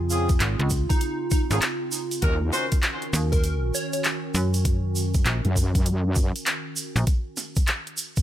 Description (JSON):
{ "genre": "glitch hop", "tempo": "99 BPM", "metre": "4/4", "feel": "swing 64% on 16ths", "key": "Eb dorian", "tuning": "A4 = 440 Hz", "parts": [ { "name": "warbly tape-like pad", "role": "sustained chords", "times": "0.0-7.0 s", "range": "Db3 to Gb4", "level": "-32 LUFS", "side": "right 2 dB", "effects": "chorus, built-in reverb, sidechain pumping" }, { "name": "slap-like FM bass", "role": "bass", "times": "0.0-7.1 s", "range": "Ab1 to Gb2", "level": "-23 LUFS", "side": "equal", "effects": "none" }, { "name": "warm horn section", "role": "stabs", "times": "0.1-2.7 s", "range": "C4 to C5", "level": "-30 LUFS", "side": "left 1 dB", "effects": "sidechain pumping, digital delay" }, { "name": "tube shaker", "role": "percussion", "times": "0.1-8.2 s", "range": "none", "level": "-33 LUFS", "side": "right 4 dB", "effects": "none" }, { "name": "drum and bass drum kit", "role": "drums", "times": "0.3-8.2 s", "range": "handclaps, hi-hat, snare drum", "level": "-27 LUFS", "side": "equal", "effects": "overdrive" }, { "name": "electronic kick drum", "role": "drums", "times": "0.3-8.2 s", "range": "none", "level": "-22 LUFS", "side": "equal", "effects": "overdrive" }, { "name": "plucky unison lead", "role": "melody", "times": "0.9-4.0 s", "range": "Eb4 to Db5", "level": "-32 LUFS", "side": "equal", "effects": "phaser, digital delay" }, { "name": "wobble bass", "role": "bass", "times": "2.2-6.3 s", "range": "Eb2 to Gb2", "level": "-23 LUFS", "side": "equal", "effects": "chorus, tube saturation" } ], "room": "digital ambience", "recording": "none", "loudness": "-22 LUFS", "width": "side -12 dB against mid", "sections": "0.0-8.2 A section", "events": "none", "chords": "0.0 Dbmaj7; 2.2 Ebm7; 7.1 N.C." }